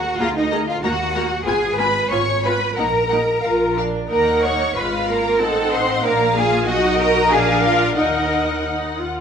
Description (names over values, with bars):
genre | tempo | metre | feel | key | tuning
quick classical-period movement for string orchestra | 93 BPM | 2/4 | uneven beats, rubato | Eb minor | A4 = 440 Hz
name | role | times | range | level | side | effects
warm studio violin section | second line | 0.0-8.6 s | Eb5 to Db6 | -23 LUFS | left 3 dB | none
clear studio double bass section | bass | 0.0-9.1 s | Ab1 to Eb2 | -27 LUFS | right 4 dB | none
rich studio cello section | bass | 0.0-8.6 s | Eb4 to Db5 | -20 LUFS | right 2 dB | none
rich studio violin section | melody | 0.2-9.1 s | D#5 to Bb5 | -26 LUFS | left 3 dB | none
clear studio viola section | accompaniment | 0.2-9.2 s | Ab3 to Bb4 | -22 LUFS | left 1 dB | none
room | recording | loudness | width
wet recital hall reverb, RT60 1.3 s | recorded in a church or concert hall, nothing above 10.4 kHz | -16 LUFS | side -7 dB against mid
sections
0.0-9.2 A section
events
none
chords
0.2 Bb7/D; 0.8 Ebm; 1.5 Fdim/Ab; 2.8 N.C.; 3.4 Bb; 4.1 Ebm; 4.8 Fdim/Ab; 5.4 Adim7; 6.0 Bb; 6.7 B; 7.3 Bb7; 8.0 Ebm